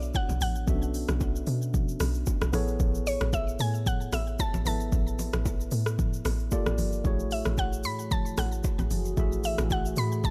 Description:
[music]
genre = amapiano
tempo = 113 BPM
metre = 4/4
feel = swing 55% on 16ths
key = B dorian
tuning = A4 = 440 Hz
[part]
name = mallet-like synth pluck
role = melody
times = 0.0-10.3 s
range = C#5 to B5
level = -36 LUFS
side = equal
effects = chorus, tape echo
[part]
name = barky tine electric piano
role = accompaniment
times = 0.0-10.3 s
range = A3 to E5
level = -38 LUFS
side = equal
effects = none
[part]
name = deep log drum bass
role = bass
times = 0.0-10.3 s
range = F#1 to B2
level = -32 LUFS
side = equal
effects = none
[part]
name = afro-pop drum kit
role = drums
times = 0.0-10.3 s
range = hi-hat, kick drum, rim click, shaker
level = -33 LUFS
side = equal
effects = none
[part]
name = impact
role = sound effects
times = 0.0-0.7 s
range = none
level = barely audible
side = none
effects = none
[part]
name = bongos and congas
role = percussion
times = 0.1-10.3 s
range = none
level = -39 LUFS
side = equal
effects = none
[part]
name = deep dark ambient pad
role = sustained chords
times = 8.0-10.3 s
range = E3 to G#4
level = -41 LUFS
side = equal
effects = chorus, built-in reverb, sidechain pumping
[sound]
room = digital ambience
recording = none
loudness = -28 LUFS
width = mono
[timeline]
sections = 0.0-10.3 A section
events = impact 0.0-0.7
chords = 0.0 Bm7; 2.5 Amaj9; 6.5 Gm9; 7.0 F#m9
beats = 0.14 | 0.68 1.21 1.74 2.27 | 2.80 3.33 3.86 4.39 | 4.92 5.46 5.99 6.52 | 7.05 7.58 8.11 8.64 | 9.17 9.70 10.23

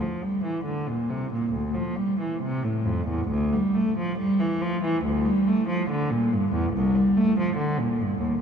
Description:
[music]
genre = classical, baroque-style suite movement for unaccompanied cello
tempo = 65-73 BPM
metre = 4/4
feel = rubato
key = unclear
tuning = A4 = 440 Hz
[part]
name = rich cello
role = solo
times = 0.0-8.4 s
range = C2 to A3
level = -22 LUFS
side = equal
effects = none
[sound]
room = wet cathedral reverb, RT60 5.6 s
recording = dark, warm production, nothing above 11.0 kHz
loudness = -22 LUFS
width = side -7 dB against mid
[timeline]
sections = 0.0-8.4 A section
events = none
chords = none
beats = 0.66 1.55 2.42 | 3.31 4.19 5.04 5.89 | 6.74 7.58

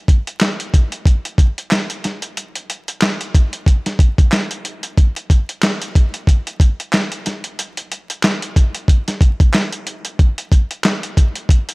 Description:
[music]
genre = hip hop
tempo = 92 BPM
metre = 4/4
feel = swing 56% on 16ths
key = none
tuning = none
[part]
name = dusty soul sampler-style drum kit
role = drums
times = 0.1-11.7 s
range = handclaps, hi-hat, kick drum, snare drum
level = -14 LUFS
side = equal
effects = none
[sound]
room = little or no reverb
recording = dry, gritty hardware recording, vinyl crackle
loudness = -14 LUFS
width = side -28 dB against mid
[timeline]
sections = 0.0-11.7 A section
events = none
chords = none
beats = 0.41 1.06 1.72 | 2.37 3.02 3.67 4.32 | 4.98 5.63 6.28 6.93 | 7.58 8.24 8.89 9.54 | 10.19 10.85 11.50

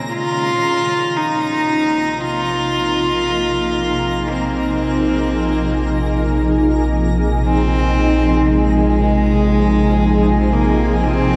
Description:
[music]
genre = ambient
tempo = free time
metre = none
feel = none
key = unclear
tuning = A4 = 440 Hz
[part]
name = rich cello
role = melody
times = 0.0-11.4 s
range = Ab3 to F4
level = -21 LUFS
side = equal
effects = shimmer reverb, analog delay
[part]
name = shimmering ambient pad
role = sustained chords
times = 0.0-11.4 s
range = C3 to Ab4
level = -20 LUFS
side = equal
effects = chorus, built-in reverb, shimmer reverb
[part]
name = deep rumbling drone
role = bass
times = 2.5-11.4 s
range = Bb1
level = -22 LUFS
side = equal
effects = built-in reverb
[part]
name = twinkling granular texture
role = texture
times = 0.0-11.4 s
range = Bb5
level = -33 LUFS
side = equal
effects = built-in reverb, analog chorus, shimmer reverb
[sound]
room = wet lush hall reverb, RT60 2.7 s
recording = dreamy mix soaked in reverb, cassette tape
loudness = -17 LUFS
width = mono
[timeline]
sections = 0.0-11.4 A section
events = fade-in on synth drone 0.0-11.4; fade-out on synth texture 0.0-11.4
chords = 0.1 Fm/Bb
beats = free time

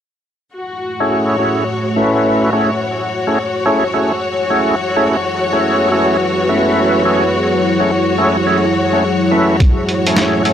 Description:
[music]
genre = glitch hop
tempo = 106 BPM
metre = 4/4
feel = swing 63% on 16ths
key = F# minor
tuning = A4 = 440 Hz
[part]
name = dark analog pad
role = sustained chords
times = 0.5-10.5 s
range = F#3 to B4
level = -19 LUFS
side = right 1 dB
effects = chorus, sidechain pumping
[part]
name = clear studio string section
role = texture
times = 0.6-10.5 s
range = F#4 to C#5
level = -17 LUFS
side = left 2 dB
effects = sidechain pumping
[part]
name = overdriven tonewheel organ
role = stabs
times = 1.0-10.5 s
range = A3 to B4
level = -16 LUFS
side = equal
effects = chorus vibrato, slow rotary speaker, vintage 12-bit sampler grit, sidechain pumping, low-pass filter, analog delay
[part]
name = boom bap sampler-style drum kit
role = drums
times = 9.6-10.5 s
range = hi-hat, snare drum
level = -17 LUFS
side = right 1 dB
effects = low-pass filter on hats, low-pass filter on snare
[part]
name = electronic kick drum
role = drums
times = 9.6-9.7 s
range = none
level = -11 LUFS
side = equal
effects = none
[sound]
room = moderate plate reverb, RT60 1.5 s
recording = dry, gritty hardware recording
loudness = -12 LUFS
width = side -9 dB against mid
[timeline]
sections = 0.5-10.5 A section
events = filter sweep on analog synth pad 0.5-10.5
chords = 0.5 F#m9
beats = | 0.55 1.11 1.68 2.25 | 2.81 3.38 3.94 4.51 | 5.08 5.64 6.21 6.77 | 7.34 7.91 8.47 9.04 | 9.60 10.17

